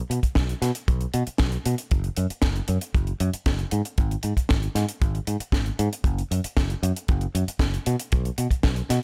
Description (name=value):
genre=nu-disco, nu disco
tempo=116 BPM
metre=4/4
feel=straight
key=unclear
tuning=A4 = 440 Hz
part: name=fingered electric bass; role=bass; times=0.1-9.0 s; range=F#1 to B2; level=-27 LUFS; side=equal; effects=sidechain pumping
part: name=tight funk drum kit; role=drums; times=0.1-9.0 s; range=hi-hat, snare drum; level=-32 LUFS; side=equal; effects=studio reverb
part: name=kick drum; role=drums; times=0.2-8.7 s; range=none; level=-25 LUFS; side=equal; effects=studio reverb
room=little or no reverb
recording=none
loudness=-25 LUFS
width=mono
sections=0.0-9.0 A section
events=none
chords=none